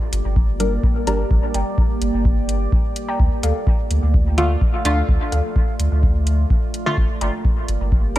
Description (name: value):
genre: dub techno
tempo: 127 BPM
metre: 4/4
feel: straight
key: D minor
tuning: A4 = 440 Hz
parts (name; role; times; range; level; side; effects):
- deep dark ambient pad; sustained chords; 0.0-8.2 s; A3 to D5; -27 LUFS; right 2 dB; chorus, built-in reverb, sidechain pumping
- warm sub bass; bass; 0.1-8.2 s; G1 to D2; -20 LUFS; equal; sidechain pumping
- electronic hi-hat; drums; 0.1-8.2 s; none; -29 LUFS; equal; none
- electronic kick drum; drums; 0.4-8.0 s; none; -18 LUFS; equal; none
- filtered dub chord stab; stabs; 0.6-1.2, 4.4-8.2 s; D3 to Bb4; -24 LUFS; left 1 dB; chorus, phaser, sidechain pumping, dub echo
- warbly dusty pluck; riff; 1.5-7.3 s; A4 to Bb5; -32 LUFS; left 1 dB; chorus, sidechain pumping, dub echo
room: digital ambience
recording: dark, warm production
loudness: -16 LUFS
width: side -15 dB against mid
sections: 0.0-8.2 A section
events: none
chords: 0.0 Gm; 3.2 Dm; 7.0 Gm